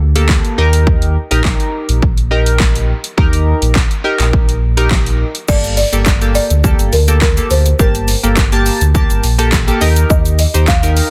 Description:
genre	dance-pop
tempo	104 BPM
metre	4/4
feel	straight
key	G minor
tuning	A4 = 440 Hz
part	sub bass with octave	bass	0.0-11.0 s	G1 to Eb2	-16 LUFS	equal	sidechain pumping
part	chorused retro synth keys	accompaniment	0.2-11.1 s	Bb3 to A5	-21 LUFS	equal	sidechain pumping
part	pop drum kit	drums	0.2-11.1 s	crash cymbal, handclaps, hi-hat, kick drum, shaker, snare drum	-17 LUFS	equal	overdrive
part	folk marimba with soft mallets	melody	5.5-11.1 s	Bb4 to F5	-22 LUFS	equal	digital delay
room	digital ambience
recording	dense, heavily limited modern master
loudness	-13 LUFS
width	mono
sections	0.0-5.5 A section; 5.5-11.1 B section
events	none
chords	0.0 Gmadd9; 0.6 Eb; 5.5 Gmadd9; 9.8 Eb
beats	0.29 | 0.87 1.45 2.02 2.60 | 3.18 3.75 4.33 4.91 | 5.49 6.06 6.64 7.22 | 7.79 8.37 8.95 9.52 | 10.10 10.68

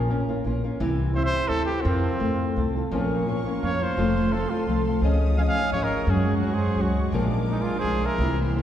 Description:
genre	mexican folk, mariachi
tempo	171 BPM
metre	3/4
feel	straight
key	Bb minor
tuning	A4 = 443 Hz
part	flamenco guitar	accompaniment	0.0-8.6 s	Gb2 to Eb5	-26 LUFS	left 1 dB	none
part	upright bass	bass	0.0-8.6 s	F1 to Gb2	-26 LUFS	equal	none
part	warm trumpet	melody	1.1-8.4 s	C4 to F5	-29 LUFS	right 1 dB	none
part	mellow trumpet	second line	1.2-8.4 s	F4 to Ab5	-35 LUFS	right 4 dB	none
part	warm studio violin section	sustained chords	2.9-8.6 s	Ab4 to Eb6	-39 LUFS	right 1 dB	none
part	Celtic harp	arpeggios	2.9-8.6 s	E3 to Bb4	-29 LUFS	right 2 dB	none
room	wet concert hall reverb, RT60 2.3 s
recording	heard from further back in the room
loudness	-22 LUFS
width	side -10 dB against mid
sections	0.0-8.6 A section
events	none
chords	0.0 Bbm; 0.8 C; 1.9 Fsus4; 2.2 F; 2.9 Bbm; 4.0 F; 5.0 Dbadd9; 6.1 Gbsus2; 7.1 Bb7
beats	0.10 0.45 | 0.80 1.15 1.50 | 1.85 2.20 2.56 | 2.92 3.27 3.62 | 3.98 4.33 4.68 | 5.03 5.38 5.73 | 6.08 6.43 6.78 | 7.14 7.50 7.85 | 8.21 8.56

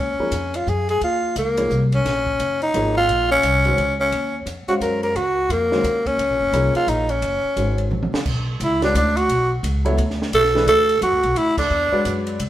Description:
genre	modal jazz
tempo	174 BPM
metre	3/4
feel	swing 63% on 8ths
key	Eb dorian, B dorian from 8.3 s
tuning	A4 = 439 Hz
part	growling tenor saxophone	melody	0.0-12.2 s	Bb3 to Bb4	-18 LUFS	equal	none
part	upright bass	bass	0.0-12.5 s	Gb1 to Gb2	-24 LUFS	equal	none
part	warm concert grand piano	accompaniment	0.2-12.4 s	Eb3 to F5	-26 LUFS	left 1 dB	none
part	compact cocktail drum kit	drums	0.3-12.5 s	crash cymbal, hi-hat, kick drum, ride cymbal, snare drum, toms	-30 LUFS	right 1 dB	none
room	moderate stone room reverb, RT60 1.1 s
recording	band playing live in one room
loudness	-17 LUFS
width	side -13 dB against mid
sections	0.0-8.3 A section; 8.3-12.5 B section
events	drum fill 7.9-8.3; band accent 11.5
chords	0.0 Ebm11; 8.3 Bmadd9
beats	0.32 0.66 | 1.01 1.35 1.70 | 2.04 2.39 2.73 | 3.08 3.42 3.77 | 4.12 4.46 4.81 | 5.15 5.50 5.84 | 6.19 6.53 6.88 | 7.22 7.57 7.91 | 8.26 8.60 8.95 | 9.29 9.63 9.98 | 10.32 10.67 11.01 | 11.36 11.70 12.05 | 12.39

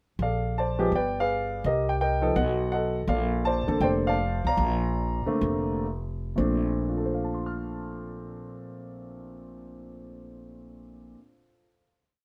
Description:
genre	jazz piano trio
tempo	116-166 BPM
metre	4/4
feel	swing 65% on 8ths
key	Bb major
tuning	A4 = 441 Hz
part	warm upright piano	melody	0.2-12.2 s	Bb2 to F6	-30 LUFS	equal	none
part	upright bass	bass	0.2-11.1 s	F1 to C2	-32 LUFS	equal	none
room	light reverb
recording	none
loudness	-27 LUFS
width	mono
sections	0.2-6.4 A section; 6.4-10.5 final chord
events	slowing down 3.1-6.4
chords	0.2 Bbmaj9; 0.9 G7b9; 1.6 Cm7; 2.4 B7; 3.1 Bbmaj9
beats	| 0.19 0.55 0.91 1.27 | 1.64 2.00 2.36 2.72 | 3.08 3.44 3.81 4.19 | 4.58 4.99 5.42 5.88 | 6.38 6.89 7.40 7.92 | 8.43 8.95 9.46 9.98

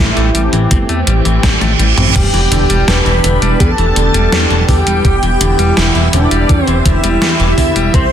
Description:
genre	synthwave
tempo	83 BPM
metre	4/4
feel	straight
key	E minor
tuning	A4 = 441 Hz
part	wide unison lead	melody	0.0-8.1 s	D4 to C5	-17 LUFS	equal	tape echo
part	warm analog pad	sustained chords	0.0-8.1 s	E3 to G4	-19 LUFS	equal	chorus, sidechain pumping
part	clean electric guitar	arpeggios	0.0-8.0 s	D3 to C4	-20 LUFS	left 4 dB	ping-pong delay
part	chorused synth bass	bass	0.0-8.1 s	E1 to E2	-14 LUFS	equal	tube saturation
part	gated 80s digital drum machine	drums	0.2-8.1 s	crash cymbal, hi-hat, snare drum, toms	-16 LUFS	equal	gated reverb, gated reverb snare
part	electronic kick drum	drums	0.7-8.1 s	none	-13 LUFS	equal	none
part	reverse cymbal and sub drop	sound effects	1.2-5.0 s	none	-21 LUFS	right 3 dB	none
part	string machine, violins	second line	2.2-8.1 s	D5 to C6	-21 LUFS	right 1 dB	ensemble chorus
room	light reverb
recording	dense, heavily limited modern master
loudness	-9 LUFS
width	side -9 dB against mid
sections	0.0-2.2 A section; 2.2-8.1 B section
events	reverse cymbal 1.2-2.2; drum fill 1.4-2.2; impact 2.2-5.0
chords	0.0 Am7; 2.2 Em7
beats	0.71 1.43 | 2.16 2.88 3.60 4.33 | 5.05 5.77 6.49 7.22 | 7.94

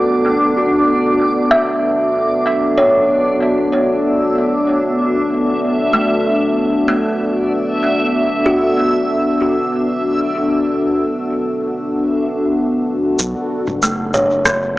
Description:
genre	ambient dub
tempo	95 BPM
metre	4/4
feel	straight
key	B minor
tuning	A4 = 440 Hz
part	deep dark ambient pad	sustained chords	0.0-14.8 s	B3 to A4	-16 LUFS	left 1 dB	chorus, built-in reverb
part	kalimba	arpeggios	0.0-10.0, 13.8-14.8 s	A3 to E5	-18 LUFS	right 1 dB	low-pass filter, tape echo
part	backwards swelling texture	texture	0.0-13.2 s	D4 to E5	-20 LUFS	equal	built-in reverb
part	warm sub bass	bass	13.2-14.7 s	F#1 to B1	-29 LUFS	equal	none
part	organic electronic drum kit	drums	13.2-14.6 s	rim click, shaker, toms	-19 LUFS	equal	low-pass filter on perc, low-pass filter on toms, low-pass filter on snare
part	electronic kick drum	drums	14.5-14.6 s	none	-26 LUFS	equal	none
room	wet spring reverb, RT60 2.3 s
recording	small speaker sound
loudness	-14 LUFS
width	side -17 dB against mid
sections	0.0-13.2 A section; 13.2-14.8 B section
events	none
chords	0.0 Bm7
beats	| 0.56 1.20 1.83 2.46 | 3.09 3.72 4.35 4.99 | 5.62 6.25 6.88 7.51 | 8.14 8.77 9.41 10.04 | 10.67 11.30 11.93 12.56 | 13.20 13.83 14.46

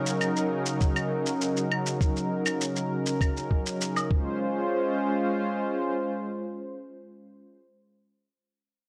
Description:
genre	folktronica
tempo	100 BPM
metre	4/4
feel	straight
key	Db major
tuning	A4 = 438 Hz
part	warm analog pad	sustained chords	0.0-7.6 s	Db3 to C5	-30 LUFS	equal	chorus, tremolo
part	shaker and claves	drums	0.1-4.1 s	none	-34 LUFS	equal	small room ambience
part	electronic kick drum	drums	0.8-4.2 s	none	-28 LUFS	equal	small room ambience
room	moderate recital hall reverb, RT60 1.6 s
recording	none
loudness	-28 LUFS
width	mono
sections	0.0-4.4 A section; 4.4-6.8 B section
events	none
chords	0.0 Ebm7/Db; 4.1 Dbmaj7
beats	0.21 0.81 1.41 | 2.01 2.61 3.21 3.81 | 4.41 5.01 5.61 6.21

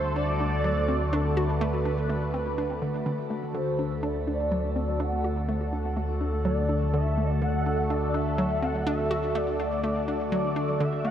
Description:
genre	ambient, sequencer-driven space music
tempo	124 BPM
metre	4/4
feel	straight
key	unclear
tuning	A4 = 439 Hz
part	expressive portamento lead	melody	0.0-11.1 s	A4 to F#5	-31 LUFS	equal	ensemble chorus, shimmer reverb, tape echo
part	phased analog pad	sustained chords	0.0-11.1 s	D3 to B4	-29 LUFS	equal	phaser, chorus, shimmer reverb
part	hollow square pluck	riff	0.0-11.1 s	D3 to F#4	-32 LUFS	equal	chorus, shimmer reverb, tape echo
part	analog drone	bass	0.0-11.1 s	D2	-30 LUFS	equal	chorus
room	wet huge ambient reverb, RT60 8.2 s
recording	none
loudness	-25 LUFS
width	side -10 dB against mid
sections	0.0-3.1 A section; 3.1-11.1 B section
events	none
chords	0.0 D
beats	0.16 0.65 | 1.13 1.61 2.10 2.58 | 3.06 3.55 4.03 4.52 | 5.00 5.48 5.97 6.45 | 6.93 7.42 7.90 8.39 | 8.87 9.35 9.84 10.32 | 10.81

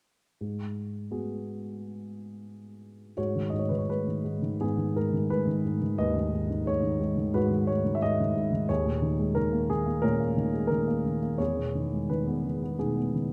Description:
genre	classical, lyrical solo piano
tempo	87 BPM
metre	4/4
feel	rubato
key	G# minor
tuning	A4 = 440 Hz
part	dark baby grand piano	solo	0.4-13.3 s	D#2 to E5	-29 LUFS	equal	none
room	moderate recital hall reverb, RT60 1.7 s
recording	close, detailed microphones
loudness	-28 LUFS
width	mono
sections	0.4-3.2 A section; 3.2-13.3 B section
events	none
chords	0.4 G#m7; 8.7 D#7sus4; 11.4 Emaj7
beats	| 0.41 1.11 1.80 2.48 | 3.18 3.89 4.60 5.29 | 5.98 6.66 7.34 8.02 | 8.69 9.36 10.04 10.71 | 11.40 12.09 12.79

